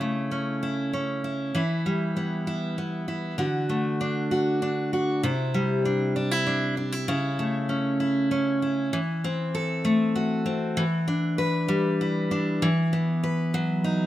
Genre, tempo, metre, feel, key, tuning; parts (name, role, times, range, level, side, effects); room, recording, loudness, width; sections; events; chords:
pop; 65 BPM (dotted quarters); 6/8; straight; A4 = 440 Hz
picked steel-string acoustic guitar; solo; 0.0-14.1 s; C3 to B4; -23 LUFS; equal
light reverb, studio reverb; rough home demo mix; -23 LUFS; side -14 dB against mid
0.0-8.9 A section; 8.9-14.1 B section
0.0 A/C#; 1.5 Em; 3.4 D; 5.2 Cadd9; 7.1 A/C#; 8.9 F#dim/E; 10.8 G/E; 12.6 B/E